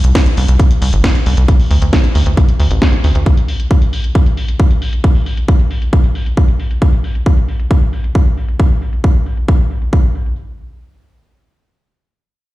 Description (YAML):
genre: uplifting trance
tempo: 135 BPM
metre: 4/4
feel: straight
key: unclear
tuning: A4 = 439 Hz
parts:
  - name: tight sequencer bass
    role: bass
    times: 0.0-3.2 s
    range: G1 to D2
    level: -10 LUFS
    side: equal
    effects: sidechain pumping
  - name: house drum kit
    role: drums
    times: 0.0-10.4 s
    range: hi-hat, snare drum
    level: -21 LUFS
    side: equal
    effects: low-pass filter on snare, low-pass filter on hats, low-pass filter on room
  - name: electronic kick drum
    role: drums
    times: 0.2-10.0 s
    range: none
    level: -11 LUFS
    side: equal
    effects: none
room: little or no reverb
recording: played on a big sound system in a bare room, large studio reverb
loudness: -11 LUFS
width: side -17 dB against mid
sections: 0.0-10.4 A section; 10.4-12.5 B section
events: none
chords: none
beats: 0.15 0.59 1.04 | 1.48 1.93 2.37 2.82 | 3.26 3.71 4.15 4.59 | 5.04 5.48 5.93 6.37 | 6.82 7.26 7.71 8.15 | 8.60 9.04 9.48 9.93